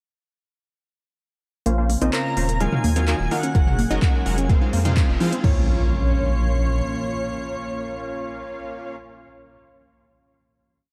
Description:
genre	progressive house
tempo	127 BPM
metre	4/4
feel	straight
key	Bb minor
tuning	A4 = 436 Hz
part	airy breathy pad	sustained chords	1.7-9.0 s	Bb2 to C6	-34 LUFS	equal	chorus, sidechain pumping
part	unison pluck	arpeggios	1.7-5.7 s	F3 to Bb4	-30 LUFS	equal	sidechain pumping, tape echo
part	supersaw stab	stabs	1.7-9.0 s	Gb3 to Gb5	-32 LUFS	equal	sidechain pumping, low-pass filter, tape echo
part	saturated sub bass	bass	1.7-6.8 s	Eb1 to F2	-24 LUFS	equal	sidechain pumping
part	deep house drum kit	drums	1.7-5.5 s	crash cymbal, handclaps, hi-hat	-34 LUFS	equal	none
part	riser and impact	sound effects	4.2-9.0 s	none	-33 LUFS	equal	none
part	twinkling granular texture	texture	2.3-5.4 s	Ab5	-45 LUFS	equal	none
part	electronic congas and toms	percussion	2.0-5.3 s	none	-30 LUFS	equal	sidechain pumping on perc, sidechain pumping on toms
part	unison lead	melody	2.1-9.0 s	Db5 to Bb5	-34 LUFS	equal	subtle chorus, sidechain pumping, tape echo
part	airy dreamy lead	second line	2.1-9.0 s	Db5 to Bb5	-38 LUFS	equal	chorus, sidechain pumping, tape echo
part	electronic kick drum	drums	3.5-5.5 s	none	-21 LUFS	equal	none
room	light reverb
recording	dark, warm production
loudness	-22 LUFS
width	mono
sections	1.7-5.4 build; 5.4-9.2 final chord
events	build-up 1.7-5.4; filter sweep on supersaw synth 1.7-5.4; filter sweep on analog synth pad 1.7-5.4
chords	1.7 Bbmadd9; 2.6 Ebmadd9; 3.5 Gbadd9; 4.5 Fm; 5.4 Bbmadd9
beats	| 1.66 2.13 2.60 3.08 | 3.55 4.02 4.50 4.97 | 5.44 5.91 6.38 6.86 | 7.33 7.80 8.28 8.75

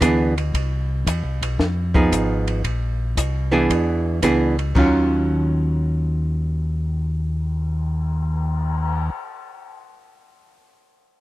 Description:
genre	soul jazz organ trio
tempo	114 BPM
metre	4/4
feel	swing 68% on 8ths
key	unclear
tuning	A4 = 442 Hz
part	archtop guitar, miked and amplified	accompaniment	0.0-9.2 s	Eb3 to G#4	-20 LUFS	right 2 dB	none
part	mellow tonewheel organ	bass	0.0-9.1 s	Ab1 to F2	-22 LUFS	left 1 dB	slow rotary speaker
part	compact cocktail drum kit	drums	0.0-8.9 s	crash cymbal, cymbal swell, hi-hat, kick drum, ride cymbal, snare drum	-26 LUFS	left 1 dB	none
room	small room ambience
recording	dry, close 1970s-style studio recording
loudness	-18 LUFS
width	side -16 dB against mid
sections	0.0-4.8 A section; 4.8-9.0 B section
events	none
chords	0.0 E7; 0.5 Cmaj7; 1.6 Fm7b5; 2.6 Bb9; 3.7 E7; 4.8 Ebm9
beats	0.01 | 0.54 1.06 1.59 2.12 | 2.65 3.17 3.70 4.23 | 4.75 5.28 5.81 6.34 | 6.86 7.39 7.92 8.45

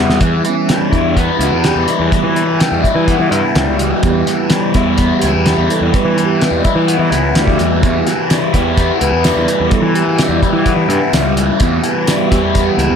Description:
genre	psychedelic rock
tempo	127 BPM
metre	4/4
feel	straight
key	E dorian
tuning	A4 = 440 Hz
part	mellow tonewheel organ	sustained chords	0.0-13.0 s	E3 to E5	-19 LUFS	right 5 dB	slow rotary speaker
part	fuzz guitar	riff	0.0-13.0 s	E3 to E4	-15 LUFS	left 2 dB	distortion, phaser
part	fuzz picked electric bass	bass	0.0-13.0 s	C#2 to E3	-17 LUFS	equal	overdrive
part	cloth-damped thuddy drum kit	drums	0.1-12.9 s	hi-hat, kick drum, snare drum	-17 LUFS	equal	none
part	tambourine	percussion	8.3-12.2 s	none	-29 LUFS	right 18 dB	none
room	light reverb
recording	none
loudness	-11 LUFS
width	side -7 dB against mid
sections	0.2-13.0 A section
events	drum fill 0.0; tonewheel organ solo 0.2-13.0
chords	0.2 Em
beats	| 0.21 0.69 1.17 1.64 | 2.12 2.60 3.08 3.55 | 4.03 4.51 4.98 5.46 | 5.93 6.41 6.88 7.36 | 7.83 8.30 8.77 9.25 | 9.72 10.19 10.66 11.13 | 11.61 12.08 12.55

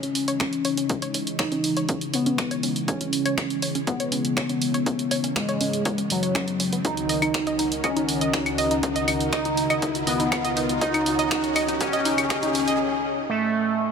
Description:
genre	melodic techno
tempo	121 BPM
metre	4/4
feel	straight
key	C# minor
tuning	A4 = 440 Hz
part	resonant sweep polysynth	melody	0.0-13.9 s	F#3 to D#4	-25 LUFS	left 1 dB	chorus, sidechain pumping, digital delay
part	lush unison pad	sustained chords	0.0-12.8 s	C#2 to A#4	-30 LUFS	equal	chorus, sidechain pumping
part	analog pluck	arpeggios	0.0-12.7 s	B3 to D#5	-29 LUFS	right 1 dB	chorus, sidechain pumping, tape echo
part	punchy analog drum machine	drums	0.0-12.8 s	claves, finger snaps, hi-hat	-28 LUFS	equal	sidechain pumping on perc, high-pass filter on perc, high-pass filter on snare, sidechain pumping on hats, high-pass filter on hats
part	riser and reverse cymbal	sound effects	0.0-13.9 s	none	-34 LUFS	equal	none
part	electronic kick drum	drums	0.4-12.4 s	none	-30 LUFS	equal	high-pass filter on kick
room	moderate huge ambient reverb, RT60 9.0 s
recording	none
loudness	-21 LUFS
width	side -6 dB against mid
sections	0.0-13.9 A section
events	build-up 0.0-13.9; riser 0.0-12.8; filter sweep on synth arpeggio sound 0.0-13.9; filter sweep on analog polysynth 0.0-13.9; filter sweep on analog synth pad 0.0-13.9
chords	0.0 C#madd9; 6.8 D#m/C#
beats	0.40 | 0.90 1.39 1.89 2.38 | 2.88 3.38 3.87 4.37 | 4.86 5.36 5.86 6.35 | 6.85 7.34 7.84 8.34 | 8.83 9.33 9.82 10.32 | 10.81 11.31 11.81 12.30 | 12.80 13.29 13.79

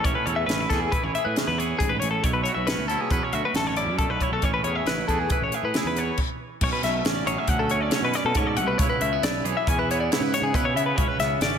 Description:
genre	math rock and midwest emo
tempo	137 BPM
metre	5/4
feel	straight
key	unclear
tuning	A4 = 440 Hz
part	twangy electric guitar	accompaniment	0.0-11.6 s	E2 to B4	-30 LUFS	right 10 dB	slapback echo
part	twelve-string electric guitar	arpeggios	0.0-11.6 s	G#4 to G#5	-25 LUFS	left 4 dB	slapback echo
part	fuzz picked electric bass	bass	0.0-11.6 s	G#1 to C#3	-29 LUFS	equal	overdrive
part	crisp fusion drum kit	drums	0.0-11.5 s	crash cymbal, hi-hat, kick drum, snare drum	-27 LUFS	equal	none
room	moderate lush hall reverb, RT60 1.8 s, small room ambience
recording	big arena sound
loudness	-22 LUFS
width	side -7 dB against mid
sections	0.0-6.6 A section; 6.6-11.6 B section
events	stop 6.2-6.6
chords	0.0 Amaj9; 2.2 Bm9; 4.4 Amaj7; 6.6 Bm9; 8.8 C#m7; 11.0 Amaj9 (rootless)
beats	| 0.04 0.48 0.92 1.36 1.80 | 2.23 2.67 3.11 3.55 3.98 | 4.42 4.86 5.30 5.74 6.17 | 6.61 7.05 7.48 7.92 8.36 | 8.79 9.23 9.66 10.10 10.53 | 10.97 11.40

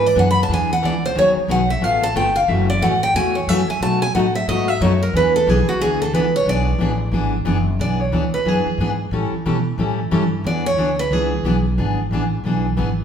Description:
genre	acoustic string swing (jazz manouche)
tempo	181 BPM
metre	4/4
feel	swing 60% on 8ths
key	E mixolydian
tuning	A4 = 440 Hz
part	picked steel-string acoustic guitar	melody	0.0-11.7 s	F#4 to B5	-19 LUFS	right 1 dB	none
part	picked steel-string acoustic guitar	accompaniment	0.0-12.9 s	B2 to A4	-21 LUFS	left 1 dB	none
part	upright bass	bass	0.0-13.0 s	F#1 to B2	-22 LUFS	equal	none
room	wet large studio reverb, RT60 1.2 s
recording	band playing live in one room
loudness	-16 LUFS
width	side -8 dB against mid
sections	0.0-7.8 A section; 7.8-13.0 A section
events	steel-string acoustic guitar solo 0.0-7.8, 7.8-13.0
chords	0.0 E7; 1.2 G#m7; 1.8 C#aug7; 2.5 F#m7; 3.8 B7; 5.1 E7; 9.1 A7; 10.4 E7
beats	0.16 0.49 0.83 | 1.16 1.49 1.82 2.15 | 2.48 2.82 3.15 3.48 | 3.81 4.14 4.47 4.80 | 5.14 5.47 5.80 6.13 | 6.46 6.79 7.13 7.46 | 7.79 8.12 8.45 8.79 | 9.12 9.45 9.78 10.12 | 10.45 10.78 11.11 11.44 | 11.78 12.11 12.44 12.77

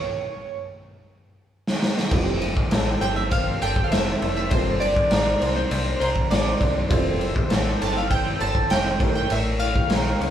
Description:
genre	indie pop, bedroom pop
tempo	100 BPM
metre	4/4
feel	straight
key	F major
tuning	A4 = 441 Hz
part	chorused retro synth keys	melody	0.0-10.3 s	C5 to A5	-26 LUFS	right 1 dB	none
part	electric guitar through a small old amp	accompaniment	0.0-10.3 s	G2 to Bb4	-31 LUFS	equal	vibrato effect
part	raw garage drum kit	drums	1.7-10.3 s	crash cymbal, kick drum, ride cymbal, snare drum	-23 LUFS	equal	none
part	warm upright piano	accompaniment	2.1-10.3 s	E3 to Bb4	-32 LUFS	right 2 dB	none
part	warm analog pad	sustained chords	2.1-10.3 s	Bb3 to E6	-34 LUFS	left 1 dB	chorus
part	slap-like FM bass	bass	2.1-10.3 s	F1 to C#2	-28 LUFS	equal	none
room	wet large studio reverb, RT60 0.9 s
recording	band playing live in one room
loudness	-20 LUFS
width	side -10 dB against mid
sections	0.0-2.1 A section; 2.1-10.3 A section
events	stop 0.0-2.1; drum fill 0.9-2.1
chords	0.0 A; 0.9 N.C.; 2.1 Fmaj9; 4.5 Gm11; 6.9 Fmaj9; 9.0 A7b9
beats	0.32 0.92 1.52 | 2.12 2.72 3.31 3.91 | 4.51 5.11 5.71 6.31 | 6.91 7.51 8.11 8.71 | 9.30 9.90

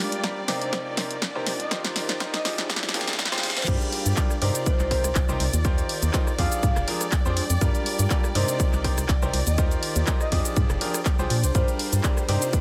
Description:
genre	piano house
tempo	122 BPM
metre	4/4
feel	swing 54% on 16ths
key	F dorian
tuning	A4 = 440 Hz
part	warm symphonic string section	sustained chords	0.0-12.6 s	C5 to D5	-38 LUFS	equal	sidechain pumping
part	bright grand piano	riff	0.0-12.6 s	C3 to D5	-33 LUFS	equal	sidechain pumping, delay
part	riser and reverse cymbal	sound effects	0.3-3.7 s	none	-37 LUFS	equal	none
part	ethereal airy pad	texture	0.0-12.6 s	Ab3 to Bb5	-40 LUFS	equal	none
part	punchy analog drum machine	drums	0.1-12.6 s	crash cymbal, handclaps, hi-hat, ride cymbal, rim click, shaker, snare drum	-31 LUFS	equal	none
part	electronic kick drum	drums	0.2-12.6 s	none	-27 LUFS	equal	overdrive, high-pass filter on kick, high-pass filter on room
part	breathy flute-like synth lead	melody	0.5-12.6 s	C5 to F5	-35 LUFS	equal	lush chorus, delay
part	organ-like FM bass	bass	3.7-12.4 s	F1 to Bb2	-27 LUFS	equal	sidechain pumping
room	digital ambience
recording	high-pass filter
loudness	-24 LUFS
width	mono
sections	0.0-3.7 A section; 3.7-12.6 B section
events	build-up 0.0-3.7; drum fill 0.0-3.7; filter sweep 0.0-3.7; reverse cymbal 2.7-3.7; drop 3.7-12.6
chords	0.0 Cm7; 1.7 Eb69; 2.5 Fm69; 3.7 Gm7; 4.7 Cm7; 5.6 Eb69; 6.4 Fm69; 7.6 Gm7; 8.6 Cm7; 9.6 Eb69; 10.3 Fm69; 11.5 Gm7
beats	0.24 0.73 1.22 | 1.71 2.21 2.70 3.19 | 3.68 4.17 4.66 5.16 | 5.65 6.14 6.63 7.12 | 7.61 8.11 8.60 9.09 | 9.58 10.07 10.56 11.06 | 11.55 12.04 12.53

